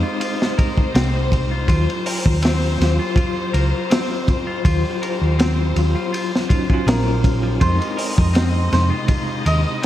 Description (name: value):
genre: trip hop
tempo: 81 BPM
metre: 4/4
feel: straight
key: unclear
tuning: A4 = 438 Hz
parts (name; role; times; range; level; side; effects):
- santur; melody; 0.0-1.9, 6.9-9.9 s; Bb4 to F5; -27 LUFS; right 1 dB; tape echo
- bell-like tine electric piano; accompaniment; 0.0-9.9 s; C3 to F4; -25 LUFS; left 1 dB; medium stereo tremolo, vintage 12-bit sampler grit, tape echo
- bright symphonic string section; sustained chords; 0.0-9.9 s; C5 to Eb5; -28 LUFS; left 4 dB; none
- semi-hollow electric guitar; arpeggios; 0.0-9.9 s; F3 to Bb4; -29 LUFS; left 1 dB; tape echo
- crunchy breakbeat drum kit; drums; 0.2-9.9 s; hi-hat, kick drum, ride cymbal, snare drum; -20 LUFS; equal; gated reverb
- hollow-body short-scale fingered electric bass; bass; 0.9-9.6 s; Bb1 to F2; -18 LUFS; equal; none
room: light reverb, small room ambience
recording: bright 1980s-style digital production, vinyl crackle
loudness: -16 LUFS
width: side -13 dB against mid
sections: 0.0-9.9 A section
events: none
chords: 0.0 Fm7; 1.7 Ebm7; 7.6 Fm7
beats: 0.21 0.95 | 1.69 2.43 3.17 3.91 | 4.65 5.39 6.13 6.87 | 7.61 8.35 9.10 9.84